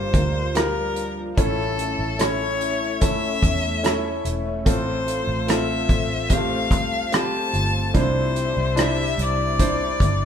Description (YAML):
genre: pop ballad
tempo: 73 BPM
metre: 4/4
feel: straight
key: unclear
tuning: A4 = 441 Hz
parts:
  - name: clear violin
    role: melody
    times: 0.0-10.2 s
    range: A4 to A5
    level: -25 LUFS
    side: left 4 dB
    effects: none
  - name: warm concert grand piano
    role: accompaniment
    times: 0.0-10.2 s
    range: G2 to C5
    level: -27 LUFS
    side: right 1 dB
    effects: none
  - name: lush unison pad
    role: sustained chords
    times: 0.0-10.2 s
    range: C3 to Bb4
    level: -30 LUFS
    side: equal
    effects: chorus
  - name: nylon-string guitar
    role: arpeggios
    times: 0.0-10.2 s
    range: G2 to Bb4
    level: -34 LUFS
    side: left 5 dB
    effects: none
  - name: vintage muted fingered electric bass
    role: bass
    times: 0.0-10.2 s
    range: E1 to E2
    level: -27 LUFS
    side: right 1 dB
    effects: none
  - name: modern studio drum kit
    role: drums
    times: 0.1-10.2 s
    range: hi-hat, kick drum, rim click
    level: -23 LUFS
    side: right 1 dB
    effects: none
room: moderate stone room reverb, RT60 1.0 s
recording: band playing live in one room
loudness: -19 LUFS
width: side -8 dB against mid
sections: 0.0-10.2 A section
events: none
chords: 0.0 Gm7; 1.4 A; 4.7 F/A; 7.9 Cadd9